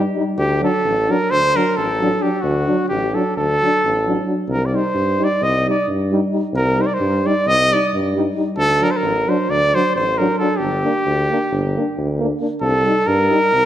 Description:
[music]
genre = balkan folk, Balkan brass band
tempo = 264 BPM (eighths)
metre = 9/8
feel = straight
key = unclear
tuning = A4 = 437 Hz
[part]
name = mellow trumpet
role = melody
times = 0.0-13.7 s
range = F#4 to Eb5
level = -18 LUFS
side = equal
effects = none
[part]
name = mellow French horn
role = accompaniment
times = 0.0-13.4 s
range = D4 to Eb4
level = -24 LUFS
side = left 3 dB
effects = none
[part]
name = mellow trombone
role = accompaniment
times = 0.0-13.4 s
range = F#3 to Bb3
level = -24 LUFS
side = right 3 dB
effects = none
[part]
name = warm tuba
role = bass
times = 0.0-13.7 s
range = G1 to G2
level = -22 LUFS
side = equal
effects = none
[sound]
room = wet scoring stage reverb, RT60 1.5 s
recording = none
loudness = -15 LUFS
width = side -11 dB against mid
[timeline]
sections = 0.0-12.6 A section; 12.6-13.7 A section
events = none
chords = 0.4 D; 4.5 Cm; 8.6 D; 10.6 Gm; 12.6 Cm

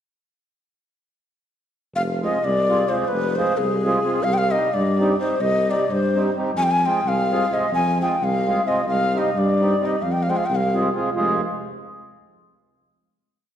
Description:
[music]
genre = balkan folk, Balkan wedding band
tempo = 261 BPM (eighths)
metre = 5/8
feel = straight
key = F minor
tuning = A4 = 440 Hz
[part]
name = breathy bright low ney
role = melody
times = 2.0-10.8 s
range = Ab4 to Ab5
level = -21 LUFS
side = left 1 dB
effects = none
[part]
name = warm tuba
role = bass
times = 2.0-11.4 s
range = F1 to G2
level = -23 LUFS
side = equal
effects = none
[part]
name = mellow accordion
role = accompaniment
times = 2.2-11.4 s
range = G3 to Ab4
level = -24 LUFS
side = right 1 dB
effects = none
[sound]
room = wet scoring stage reverb, RT60 1.7 s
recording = heard from further back in the room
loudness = -18 LUFS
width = side -10 dB against mid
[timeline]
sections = 2.0-11.2 A section; 11.2-12.3 final chord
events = none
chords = 2.0 Fm; 4.3 Cm; 6.6 Fm; 8.9 Cm; 10.0 Fm

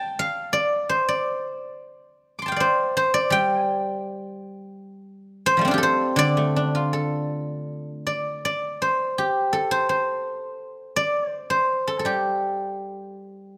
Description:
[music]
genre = chinese traditional, Chinese solo plucked strings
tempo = 77-86 BPM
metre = 2/4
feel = rubato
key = D yu mode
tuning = A4 = 440 Hz
[part]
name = guzheng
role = solo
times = 0.0-13.6 s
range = D3 to D6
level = -24 LUFS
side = equal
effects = none
[sound]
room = light reverb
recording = close, detailed microphones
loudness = -23 LUFS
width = mono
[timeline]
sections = 0.0-7.7 A section; 7.7-13.6 B section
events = none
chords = none

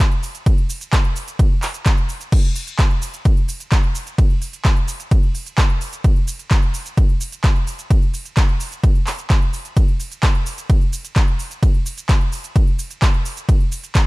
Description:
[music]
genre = EDM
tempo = 129 BPM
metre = 4/4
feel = straight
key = none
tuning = none
[part]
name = big-room dance drum kit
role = drums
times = 0.0-14.0 s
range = crash cymbal, handclaps, hi-hat, ride cymbal, shaker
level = -26 LUFS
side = right 1 dB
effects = none
[part]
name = electronic kick drum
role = drums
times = 0.0-14.0 s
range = none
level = -15 LUFS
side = equal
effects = none
[sound]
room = little or no reverb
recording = dark, warm production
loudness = -16 LUFS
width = side -22 dB against mid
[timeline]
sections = 0.0-2.3 A section; 2.3-14.1 A section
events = drop 0.0-2.3, 2.3-14.1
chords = none

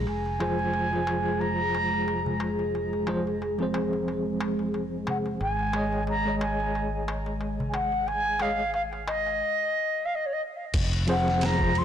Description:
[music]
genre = trip hop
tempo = 90 BPM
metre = 4/4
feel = swing 56% on 16ths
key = F minor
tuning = A4 = 441 Hz
[part]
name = dark analog pad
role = sustained chords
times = 0.0-11.8 s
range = Ab3 to Ab4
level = -32 LUFS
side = equal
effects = chorus
[part]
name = fingered electric bass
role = bass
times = 0.0-11.8 s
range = F1 to Ab1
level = -33 LUFS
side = equal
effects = none
[part]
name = mellow concert flute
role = melody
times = 0.1-11.8 s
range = Db5 to C6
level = -28 LUFS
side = equal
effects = tape echo
[part]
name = darbuka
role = percussion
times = 0.1-9.4 s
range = none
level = -38 LUFS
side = left 1 dB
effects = none
[part]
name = tine electric piano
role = accompaniment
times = 0.4-11.8 s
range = F3 to Eb5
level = -30 LUFS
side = equal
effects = tremolo
[part]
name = trip hop sampler-style drum kit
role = drums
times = 10.7-11.8 s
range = crash cymbal, kick drum, ride cymbal, snare drum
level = -30 LUFS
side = equal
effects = none
[sound]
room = light reverb, digital ambience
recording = blown-out, overdriven recording, overdrive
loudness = -25 LUFS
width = side -9 dB against mid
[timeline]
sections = 0.1-10.7 A section; 10.7-11.8 B section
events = none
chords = 0.1 Fm; 5.4 Absus4; 10.7 Fm

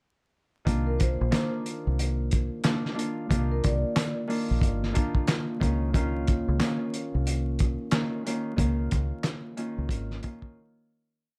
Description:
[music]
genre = hip hop, boom-bap hip-hop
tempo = 91 BPM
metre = 4/4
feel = swing 63% on 16ths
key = C phrygian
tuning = A4 = 439 Hz
[part]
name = Celtic harp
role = accompaniment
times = 0.6-11.3 s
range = Eb3 to F4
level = -33 LUFS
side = equal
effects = high-pass filter, low-pass filter
[part]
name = deep dub fingered electric bass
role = bass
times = 0.7-10.2 s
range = G1 to Db2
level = -30 LUFS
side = equal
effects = none
[part]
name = cloth-damped thuddy drum kit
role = drums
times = 0.7-10.5 s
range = handclaps, hi-hat, kick drum, snare drum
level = -29 LUFS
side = equal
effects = none
[part]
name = vibraphone with soft mallets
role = melody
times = 0.9-4.1 s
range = Bb4 to D5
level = -39 LUFS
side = equal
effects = high-pass filter, low-pass filter, tape echo
[sound]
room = light reverb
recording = vinyl crackle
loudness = -28 LUFS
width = mono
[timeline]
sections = 0.7-11.2 verse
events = fade-out 8.6-11.2; break 10.6-11.2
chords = 0.7 Cm11; 5.6 Db69

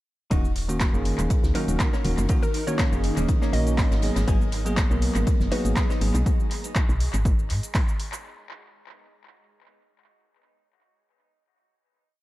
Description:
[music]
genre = deep house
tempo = 121 BPM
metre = 4/4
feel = swing 54% on 16ths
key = G# minor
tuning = A4 = 440 Hz
[part]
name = hollow-body jazz guitar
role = melody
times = 0.3-6.1 s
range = F#3 to G#4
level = -36 LUFS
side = equal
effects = dub echo
[part]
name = bell-like tine electric piano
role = stabs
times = 0.3-6.2 s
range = D#3 to A#4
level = -28 LUFS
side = equal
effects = vintage 12-bit sampler grit, sidechain pumping, tape echo
[part]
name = woody FM bass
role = bass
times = 0.3-7.6 s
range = D#1 to G#2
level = -25 LUFS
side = equal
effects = sidechain pumping
[part]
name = deep house drum kit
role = drums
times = 0.3-8.2 s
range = handclaps, hi-hat, shaker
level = -33 LUFS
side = equal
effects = overdrive, tape echo
[part]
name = electronic kick drum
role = drums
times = 0.3-7.9 s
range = none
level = -23 LUFS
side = equal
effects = overdrive
[part]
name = loose indie drum kit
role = drums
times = 0.3-6.3 s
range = ride cymbal, snare drum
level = -42 LUFS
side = left 2 dB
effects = sidechain pumping on cymbals, high-pass filter on cymbals, high-pass filter on snare, high-pass filter on room
[part]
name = granular cloud pad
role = texture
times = 1.5-6.3 s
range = D#4 to D#5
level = -37 LUFS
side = equal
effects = built-in reverb, sidechain pumping
[part]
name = hollow square pluck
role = melody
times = 1.5-5.7 s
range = A#4 to D#5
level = -35 LUFS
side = equal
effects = chorus, tape echo
[sound]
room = light reverb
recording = echo-heavy mix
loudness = -21 LUFS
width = side -17 dB against mid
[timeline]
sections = 0.3-8.2 drop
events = drop 0.3-8.2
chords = 0.3 D#m7; 4.0 G#m9

